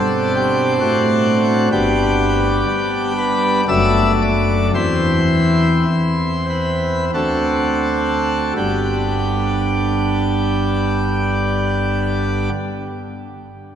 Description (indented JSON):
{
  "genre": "classical, chorale-style piece for pipe organ",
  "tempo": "40-67 BPM",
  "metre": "3/4",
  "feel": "rubato",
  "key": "G major",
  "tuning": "A4 = 440 Hz",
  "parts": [
    { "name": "pipe organ, plenum", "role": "solo", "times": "0.0-12.5 s", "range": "F#1 to E5", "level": "-15 LUFS", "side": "equal", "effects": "none" }
  ],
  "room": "wet cathedral reverb, RT60 4.1 s",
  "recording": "none",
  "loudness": "-15 LUFS",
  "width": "side -9 dB against mid",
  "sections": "0.0-8.6 A section; 8.6-13.0 B section",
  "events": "slowing down 0.3-8.6",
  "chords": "0.0 D7; 1.7 G; 3.7 D/F#; 4.7 C/E; 7.1 D7; 8.6 G",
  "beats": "0.80 | 1.71 2.66 3.67 | 4.73 5.87 7.13 | 8.56 10.03 11.51"
}